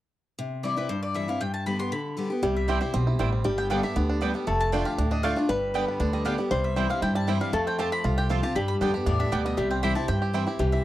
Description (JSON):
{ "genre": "bluegrass", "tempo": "235 BPM", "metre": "4/4", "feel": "straight", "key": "C major", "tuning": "A4 = 441 Hz", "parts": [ { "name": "picked steel-string acoustic guitar", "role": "accompaniment", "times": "0.4-10.8 s", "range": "F2 to G4", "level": "-29 LUFS", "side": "left 2 dB", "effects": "none" }, { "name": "mandolin", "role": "melody", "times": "0.6-10.8 s", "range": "B4 to C6", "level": "-32 LUFS", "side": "left 2 dB", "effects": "none" }, { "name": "bluegrass banjo", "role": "melody", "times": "2.4-10.8 s", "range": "E3 to G4", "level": "-32 LUFS", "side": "right 5 dB", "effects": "none" }, { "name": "lap resonator guitar", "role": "second line", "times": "2.4-10.8 s", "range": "G4 to C5", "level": "-30 LUFS", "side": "left 2 dB", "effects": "none" }, { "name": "upright bass", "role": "bass", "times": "2.4-10.8 s", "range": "F1 to G2", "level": "-28 LUFS", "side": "equal", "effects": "none" }, { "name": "mandolin", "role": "stabs", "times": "2.7-10.4 s", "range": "A3 to A5", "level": "-33 LUFS", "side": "right 6 dB", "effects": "none" } ], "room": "studio reverb", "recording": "dry, close 1970s-style studio recording", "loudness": "-24 LUFS", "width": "side -14 dB against mid", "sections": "0.4-2.4 A section; 2.4-10.6 B section", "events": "none", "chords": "0.4 C; 1.4 G; 2.4 C; 3.4 G; 4.5 Dm/F; 5.5 G; 6.5 C; 7.5 F; 8.6 G; 9.6 C" }